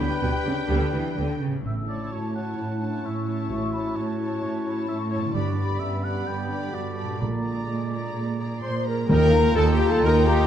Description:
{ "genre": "cinematic, heroic adventure film score", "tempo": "129 BPM", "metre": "4/4", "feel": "straight", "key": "unclear", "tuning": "A4 = 439 Hz", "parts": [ { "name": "warm symphonic violin section", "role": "melody", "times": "0.0-10.5 s", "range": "G5 to C6", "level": "-38 LUFS", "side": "left 4 dB", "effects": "none" }, { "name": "dark clarinet", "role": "second line", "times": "0.0-10.5 s", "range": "B3 to F#4", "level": "-35 LUFS", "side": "left 2 dB", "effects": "none" }, { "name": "mellow hollow large flute ensemble", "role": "second line", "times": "0.0-10.5 s", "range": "A5 to G6", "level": "-37 LUFS", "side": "left 1 dB", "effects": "none" }, { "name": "warm oboe", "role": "second line", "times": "0.0-10.5 s", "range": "B4 to G5", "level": "-37 LUFS", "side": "right 2 dB", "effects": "none" }, { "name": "warm symphonic violin section", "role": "second line", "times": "0.0-10.5 s", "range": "G4 to Bb5", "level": "-37 LUFS", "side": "left 2 dB", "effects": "none" }, { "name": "dark symphonic viola section", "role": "accompaniment", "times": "0.0-10.5 s", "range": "G3 to Ab4", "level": "-36 LUFS", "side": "right 1 dB", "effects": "none" }, { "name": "clear French horn section", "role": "sustained chords", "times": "0.0-10.5 s", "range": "D3 to C5", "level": "-28 LUFS", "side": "left 4 dB", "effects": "none" }, { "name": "concert harp", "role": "arpeggios", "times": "0.0-10.5 s", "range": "G2 to B5", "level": "-36 LUFS", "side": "left 7 dB", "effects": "none" }, { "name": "clear trumpet section", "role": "stabs", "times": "0.0-1.4, 8.6-10.5 s", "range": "G4 to C5", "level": "-31 LUFS", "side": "equal", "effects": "none" }, { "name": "clear symphonic double bass section", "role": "bass", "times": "0.0-10.4 s", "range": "G1 to Eb2", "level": "-26 LUFS", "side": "right 3 dB", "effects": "none" }, { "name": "dark symphonic cello section", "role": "bass", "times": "0.0-10.4 s", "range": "Eb2 to E3", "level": "-28 LUFS", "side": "right 3 dB", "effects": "none" }, { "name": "timpani", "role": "percussion", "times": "9.1-9.8 s", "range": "Eb3", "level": "-27 LUFS", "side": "right 1 dB", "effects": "none" } ], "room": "moderate scoring stage reverb, RT60 1.8 s", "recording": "dark, warm production", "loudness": "-22 LUFS", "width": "side -10 dB against mid", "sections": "0.0-1.6 A section; 1.6-9.1 B section; 9.1-10.5 C section", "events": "none", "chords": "0.0 G/D; 1.6 A; 5.3 G; 7.2 Bb7; 9.1 Ebadd9", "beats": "0.22 0.70 1.17 | 1.64 2.11 2.57 3.03 | 3.50 3.96 4.42 4.88 | 5.34 5.80 6.26 6.73 | 7.20 7.68 8.15 8.62 | 9.09 9.56 10.03" }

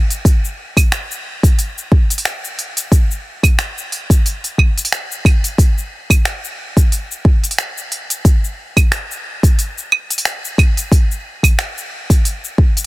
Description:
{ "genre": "downtempo", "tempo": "90 BPM", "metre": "4/4", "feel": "swing 55% on 16ths", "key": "none", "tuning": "none", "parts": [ { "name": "afro-pop drum kit", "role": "drums", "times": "0.1-12.9 s", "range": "cabasa, claves, finger snaps, hi-hat", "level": "-19 LUFS", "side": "right 1 dB", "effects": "soft clipping on snare" }, { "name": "electronic kick drum", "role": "drums", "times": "0.2-12.7 s", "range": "none", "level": "-11 LUFS", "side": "equal", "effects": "none" } ], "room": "little or no reverb", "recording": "dense, heavily limited modern master", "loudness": "-13 LUFS", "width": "side -20 dB against mid", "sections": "0.0-12.9 A section", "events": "none", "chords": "none", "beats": "| 0.25 0.92 1.58 2.25 | 2.92 3.58 4.25 4.92 | 5.58 6.25 6.92 7.58 | 8.25 8.92 9.58 10.25 | 10.92 11.58 12.25" }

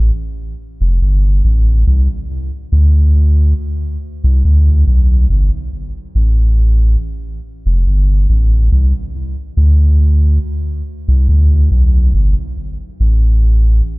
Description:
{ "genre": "reggae", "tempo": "70 BPM", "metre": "4/4", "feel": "straight", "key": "unclear", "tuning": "A4 = 440 Hz", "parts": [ { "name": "soft dub sub bass", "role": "solo", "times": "0.0-13.8 s", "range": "F1 to D2", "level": "-11 LUFS", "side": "equal", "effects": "analog delay" } ], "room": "moderate echo chamber reverb, RT60 2.2 s", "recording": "echo-heavy mix", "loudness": "-11 LUFS", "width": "side -24 dB against mid", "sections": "0.0-14.0 A section", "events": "none", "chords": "none", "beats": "0.57 1.43 | 2.29 3.14 4.00 4.86 | 5.71 6.57 7.43 8.28 | 9.14 10.00 10.85 11.71 | 12.57 13.42" }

